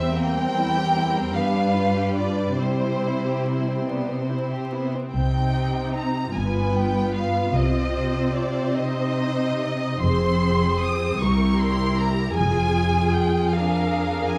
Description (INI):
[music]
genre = classical, slow romantic movement for string orchestra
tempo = 46-53 BPM (dotted quarters)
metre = 6/8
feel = rubato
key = C major, C minor from 5.1 s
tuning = A4 = 440 Hz
[part]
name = rich studio violin section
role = melody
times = 0.0-14.4 s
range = C5 to Eb6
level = -29 LUFS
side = equal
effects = none
[part]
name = clear studio violin section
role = second line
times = 0.0-14.4 s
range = G3 to Eb5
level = -32 LUFS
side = equal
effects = none
[part]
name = rich studio viola section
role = accompaniment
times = 0.0-14.4 s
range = G3 to Bb4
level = -30 LUFS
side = equal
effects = none
[part]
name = rich studio cello section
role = bass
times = 0.0-14.4 s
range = C2 to C3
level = -27 LUFS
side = equal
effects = none
[part]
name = rich studio double bass section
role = bass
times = 5.1-13.1 s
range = F1 to C2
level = -29 LUFS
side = equal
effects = none
[sound]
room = moderate recital hall reverb, RT60 1.4 s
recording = dark, warm production, vinyl crackle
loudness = -23 LUFS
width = mono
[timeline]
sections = 0.0-5.1 A section; 5.1-14.4 B section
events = none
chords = 0.2 C7/E; 1.4 G7; 2.6 C; 5.1 Cm; 6.3 G7; 7.6 Cm; 10.0 Fm; 11.2 C7; 12.4 Fm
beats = | 0.18 1.36 | 2.60 3.86 | 5.13 6.35 | 7.55 8.77 | 10.04 11.22 | 12.38 13.53